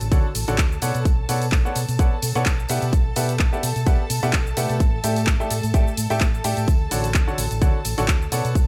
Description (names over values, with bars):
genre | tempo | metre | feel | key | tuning
piano house | 128 BPM | 4/4 | swing 55% on 16ths | D major | A4 = 440 Hz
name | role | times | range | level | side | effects
warm studio violin section | sustained chords | 0.0-8.7 s | A4 to A5 | -35 LUFS | equal | sidechain pumping
hollow-body short-scale fingered electric bass | bass | 0.0-8.7 s | A1 to B2 | -28 LUFS | equal | sidechain pumping
house drum kit | drums | 0.0-8.7 s | handclaps, hi-hat, shaker | -30 LUFS | equal | studio reverb
tambourine | percussion | 0.0-8.7 s | none | -39 LUFS | equal | none
clear upright piano | riff | 0.1-8.5 s | D3 to G5 | -29 LUFS | equal | sidechain pumping, dub echo
electronic kick drum | drums | 0.1-8.7 s | none | -21 LUFS | equal | studio reverb
room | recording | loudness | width
small room ambience | none | -21 LUFS | mono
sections
0.0-8.7 A section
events
none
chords
0.0 Dmaj7; 0.8 Bm9; 2.7 Em9/B; 4.8 A7sus4; 6.7 Dmaj7